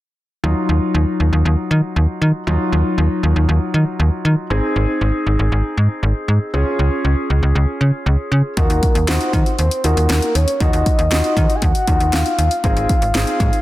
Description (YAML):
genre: synth-pop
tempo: 118 BPM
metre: 4/4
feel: straight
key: Eb dorian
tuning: A4 = 440 Hz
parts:
  - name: warm baby grand piano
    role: accompaniment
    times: 0.4-13.5 s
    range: Gb3 to Ab4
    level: -22 LUFS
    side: left 1 dB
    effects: none
  - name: slap-like FM bass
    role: bass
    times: 0.4-13.5 s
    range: Ab1 to Eb3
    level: -15 LUFS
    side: equal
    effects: none
  - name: soft octave-layered synth lead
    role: melody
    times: 8.6-13.6 s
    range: Bb4 to Ab5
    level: -20 LUFS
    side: left 1 dB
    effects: chorus, tremolo, digital delay
  - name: house drum kit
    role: drums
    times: 8.6-13.6 s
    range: hi-hat, kick drum, snare drum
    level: -18 LUFS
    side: equal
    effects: overdrive
room: light reverb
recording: dense, heavily limited modern master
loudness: -14 LUFS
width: side -16 dB against mid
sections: 0.4-8.6 A section; 8.6-13.6 B section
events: none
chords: 0.4 Ebmadd9; 4.5 Ab; 6.5 Db; 8.6 Ebmadd9; 12.6 Ab